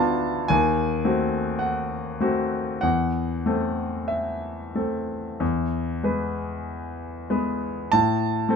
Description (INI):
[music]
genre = classical, romantic nocturne for solo piano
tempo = 45-57 BPM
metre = 4/4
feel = rubato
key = unclear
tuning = A4 = 444 Hz
[part]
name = clear concert grand piano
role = solo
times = 0.0-8.6 s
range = D2 to B5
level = -22 LUFS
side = left 1 dB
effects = none
[sound]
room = light reverb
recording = none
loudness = -22 LUFS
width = side -6 dB against mid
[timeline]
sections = 0.0-7.9 A section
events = none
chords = 0.0 Bdim/D; 0.5 D#dim7; 2.8 Am/E; 5.4 E; 7.9 N.C.